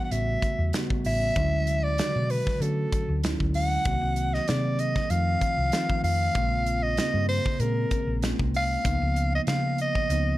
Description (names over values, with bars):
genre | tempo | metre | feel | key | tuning
electric jazz fusion | 96 BPM | 4/4 | swing 54% on 16ths | unclear | A4 = 440 Hz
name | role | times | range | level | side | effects
growling soprano saxophone | melody | 0.0-10.4 s | A4 to Gb5 | -28 LUFS | equal | none
tine electric piano | accompaniment | 0.0-10.4 s | C#3 to Ab4 | -31 LUFS | right 1 dB | wide subtle chorus
hollow-body short-scale fingered electric bass | bass | 0.1-10.3 s | A1 to D3 | -27 LUFS | equal | none
modern studio drum kit | drums | 0.1-10.3 s | hi-hat, kick drum, snare drum | -30 LUFS | equal | none
room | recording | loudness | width
light reverb | none | -23 LUFS | side -16 dB against mid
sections
0.0-10.4 A section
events
none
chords
0.1 A13; 1.4 Dmaj9#11; 3.9 Cm7b5; 5.1 F7; 6.4 Bbm9; 8.9 Db13